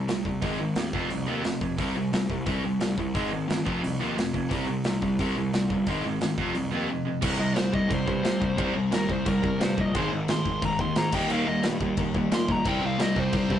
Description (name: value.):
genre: punk rock.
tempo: 176 BPM.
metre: 4/4.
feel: straight.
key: C minor.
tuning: A4 = 440 Hz.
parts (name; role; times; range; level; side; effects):
crunchy overdriven guitar; riff; 0.0-13.6 s; Ab2 to F4; -29 LUFS; right 4 dB; none.
overdriven electric guitar; riff; 0.0-13.6 s; F2 to Eb4; -30 LUFS; left 5 dB; none.
fuzz picked electric bass; bass; 0.0-13.6 s; F1 to C3; -31 LUFS; equal; overdrive.
big rock drum kit; drums; 0.1-13.6 s; crash cymbal, hi-hat, kick drum, snare drum; -30 LUFS; equal; none.
dark smooth lead guitar; melody; 7.4-13.6 s; Bb4 to C6; -31 LUFS; left 1 dB; overdrive, digital delay.
heavy high-gain guitar; riff; 12.6-13.6 s; C3 to C4; -34 LUFS; equal; distortion.
room: light reverb.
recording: rough rehearsal-room recording, nothing above 10.7 kHz.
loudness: -24 LUFS.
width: side -10 dB against mid.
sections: 0.0-7.2 A section; 7.2-13.6 B section.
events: lead electric guitar solo 7.2-13.6.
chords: 0.4 Ab; 0.9 F5; 1.8 C5; 3.1 Ab; 3.7 F5; 4.5 C5; 5.9 Ab; 6.4 F5; 7.2 C5; 9.9 Ab; 11.1 Eb; 12.7 C5.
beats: 0.08 | 0.42 0.76 1.10 1.44 | 1.78 2.12 2.46 2.81 | 3.15 3.49 3.83 4.17 | 4.51 4.85 5.19 5.53 | 5.87 6.21 6.55 6.89 | 7.23 7.57 7.91 8.25 | 8.59 8.93 9.27 9.61 | 9.95 10.28 10.62 10.96 | 11.30 11.64 11.98 12.32 | 12.66 13.00 13.34.